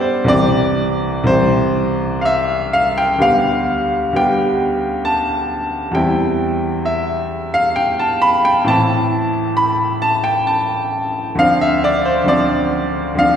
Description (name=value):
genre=classical, romantic nocturne for solo piano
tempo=56-68 BPM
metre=3/4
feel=rubato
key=C major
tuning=A4 = 441 Hz
part: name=bright grand piano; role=solo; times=0.0-13.4 s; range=C2 to B5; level=-14 LUFS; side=equal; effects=none
room=wet concert hall reverb, RT60 1.9 s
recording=recorded in a church or concert hall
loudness=-14 LUFS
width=side -8 dB against mid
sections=0.3-13.4 A section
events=none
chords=0.3 C; 3.2 G7/D; 6.0 C/E; 8.7 Am; 11.4 Dm7